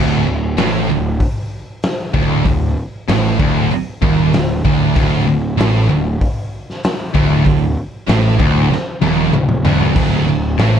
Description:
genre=stoner and doom metal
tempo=96 BPM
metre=4/4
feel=straight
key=unclear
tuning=A4 = 441 Hz
part: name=fuzz guitar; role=riff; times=0.0-10.8 s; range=D2 to A2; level=-20 LUFS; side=left 10 dB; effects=distortion
part: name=heavy high-gain guitar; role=riff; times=0.0-10.8 s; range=D2 to A2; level=-22 LUFS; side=left 1 dB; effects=distortion
part: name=thick fuzz guitar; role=riff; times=0.0-10.8 s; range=D2 to A2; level=-17 LUFS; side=right 8 dB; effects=distortion
part: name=fuzz picked electric bass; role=bass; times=0.0-10.8 s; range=D1 to A1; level=-20 LUFS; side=left 1 dB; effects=overdrive
part: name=raw garage drum kit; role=drums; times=0.6-10.7 s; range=crash cymbal, hi-hat, kick drum, snare drum, toms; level=-18 LUFS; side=left 1 dB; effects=none
room=light reverb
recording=dark, warm production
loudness=-13 LUFS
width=side -8 dB against mid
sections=0.0-10.8 A section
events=drum fill 8.7-10.0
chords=0.0 D5

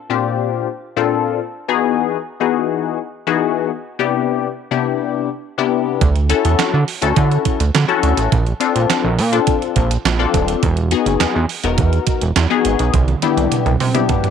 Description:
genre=early-eighties boogie funk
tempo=104 BPM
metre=4/4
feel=straight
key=unclear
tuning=A4 = 437 Hz
part: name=funky polysynth comp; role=accompaniment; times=0.1-14.3 s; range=Bb2 to Bb4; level=-18 LUFS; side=left 10 dB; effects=chorus
part: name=chorused synth bass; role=bass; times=6.0-14.0 s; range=Eb1 to D3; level=-16 LUFS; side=right 2 dB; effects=none
part: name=crisp 8-bit digital drum machine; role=drums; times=6.0-14.3 s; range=handclaps, hi-hat, kick drum, snare drum, toms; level=-19 LUFS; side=right 6 dB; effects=none
room=light reverb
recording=1960s-style stereo with parts hard left and right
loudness=-15 LUFS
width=side -7 dB against mid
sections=0.0-14.3 A section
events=drum fill 12.9-14.3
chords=0.0 Bbmaj9; 1.4 Emaj9; 3.7 Cmaj9; 6.0 Dmaj9; 8.3 Bbmaj9; 10.6 Emaj9; 12.9 Cmaj9

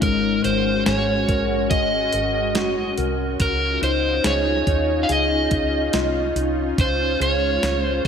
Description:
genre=dream pop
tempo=71 BPM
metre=4/4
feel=straight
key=Db major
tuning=A4 = 440 Hz
part: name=overdriven slide guitar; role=melody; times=0.0-8.1 s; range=Bb4 to F5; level=-22 LUFS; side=right 1 dB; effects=digital delay
part: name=soft string machine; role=sustained chords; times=0.0-8.1 s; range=Ab3 to Gb4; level=-26 LUFS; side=equal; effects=ensemble chorus
part: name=mellow electric guitar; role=arpeggios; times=0.0-8.1 s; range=Ab2 to Bb4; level=-26 LUFS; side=left 4 dB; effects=lush chorus, digital delay
part: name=fingered electric bass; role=bass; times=0.0-8.1 s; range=Gb1 to Eb2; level=-27 LUFS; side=equal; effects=none
part: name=crisp 8-bit digital drum machine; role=drums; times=0.0-8.1 s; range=hi-hat, kick drum, snare drum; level=-24 LUFS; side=equal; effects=gated reverb
room=moderate lush hall reverb, RT60 2.4 s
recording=bright 1980s-style digital production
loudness=-18 LUFS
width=side -7 dB against mid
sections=0.0-8.1 A section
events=none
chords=0.0 Ab9sus4; 3.4 Dbmaj9

